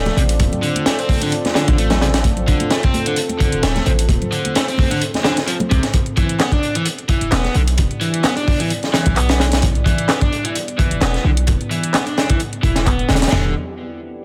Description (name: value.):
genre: breakbeat, breaks.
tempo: 130 BPM.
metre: 4/4.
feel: swing 55% on 16ths.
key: unclear.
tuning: A4 = 442 Hz.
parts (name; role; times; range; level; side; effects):
deep dark ambient pad; sustained chords; 0.0-13.5 s; B3 to D5; -29 LUFS; equal; chorus, built-in reverb, sidechain pumping.
overdriven electric guitar; riff; 0.0-13.5 s; C3 to D4; -24 LUFS; equal; low-pass filter, dub echo.
warm 808-style bass; bass; 0.0-13.5 s; D1 to C2; -21 LUFS; equal; none.
crunchy breakbeat drum kit; drums; 0.1-13.4 s; crash cymbal, hi-hat, kick drum, snare drum, toms; -20 LUFS; equal; none.
house drum kit; drums; 0.1-13.3 s; handclaps, hi-hat; -28 LUFS; equal; none.
congas; percussion; 0.1-5.9 s; none; -28 LUFS; equal; none.
room: small room ambience.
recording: none.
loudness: -17 LUFS.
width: mono.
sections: 0.0-13.3 A section.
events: filter sweep on ambient pad 0.0-13.3.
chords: 0.0 Dm7; 5.9 Em7; 13.3 Dm7.